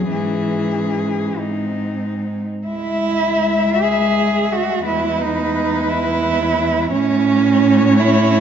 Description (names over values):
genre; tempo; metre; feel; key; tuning
classical, lyrical piece for cello ensemble; 45-59 BPM (dotted quarters); 6/8; rubato; C# minor; A4 = 440 Hz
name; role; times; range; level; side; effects
warm cello; melody; 0.0-8.4 s; D#4 to E5; -23 LUFS; left 8 dB; none
warm cello; second line; 0.0-8.4 s; B#3 to G#4; -19 LUFS; right 6 dB; none
dark cello; accompaniment; 0.0-8.4 s; E3 to C#4; -24 LUFS; left 1 dB; none
rich cello; bass; 0.0-8.4 s; C#2 to A2; -20 LUFS; equal; none
room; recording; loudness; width
moderate concert hall reverb, RT60 2.4 s; nothing above 7.5 kHz; -15 LUFS; side -8 dB against mid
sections
0.0-2.7 A section; 2.7-8.4 B section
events
none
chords
0.1 C#m/G#; 1.4 G#; 2.7 C#m; 4.9 E; 6.9 A